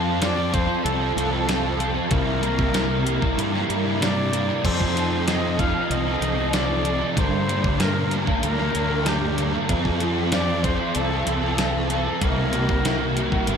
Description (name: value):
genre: rock, shoegaze and dream pop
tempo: 95 BPM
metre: 4/4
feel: straight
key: unclear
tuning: A4 = 440 Hz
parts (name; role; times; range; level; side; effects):
- crunchy overdriven guitar; riff; 0.0-13.6 s; G2 to Bb4; -23 LUFS; right 1 dB; ensemble chorus
- fuzz fingered electric bass; bass; 0.0-13.6 s; G1 to G2; -26 LUFS; equal; overdrive
- bright reedy concert flute; melody; 0.2-13.5 s; G4 to F5; -28 LUFS; left 2 dB; tape echo
- crisp 8-bit digital drum machine; drums; 0.2-13.6 s; crash cymbal, hi-hat, kick drum, snare drum; -25 LUFS; equal; none
room: moderate lush hall reverb, RT60 2.6 s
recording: dreamy mix soaked in reverb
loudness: -20 LUFS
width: side -7 dB against mid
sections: 0.0-13.6 A section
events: none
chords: 0.0 F; 2.1 C7; 4.6 F7; 7.2 Gm; 9.7 F; 12.2 C7